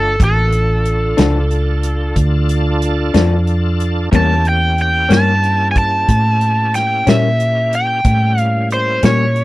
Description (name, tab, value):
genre	slow blues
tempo	61 BPM (dotted quarters)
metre	12/8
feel	straight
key	D harmonic minor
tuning	A4 = 439 Hz
part	overdriven slide guitar	melody	0.0-9.4 s	A4 to A5	-16 LUFS	equal	none
part	bright tonewheel organ	sustained chords	0.0-9.4 s	G3 to A4	-24 LUFS	right 1 dB	overdrive, chorus vibrato, slow rotary speaker
part	vintage muted fingered electric bass	bass	0.0-9.4 s	G1 to Bb2	-15 LUFS	equal	none
part	warm soul drum kit	drums	0.2-9.4 s	hi-hat, kick drum, snare drum	-16 LUFS	equal	none
part	electric guitar through a small old amp	accompaniment	1.2-9.2 s	A2 to D4	-16 LUFS	left 5 dB	tremolo
room	little or no reverb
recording	none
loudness	-12 LUFS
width	side -18 dB against mid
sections	0.0-9.4 A section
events	none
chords	0.0 Dm; 4.1 A7b9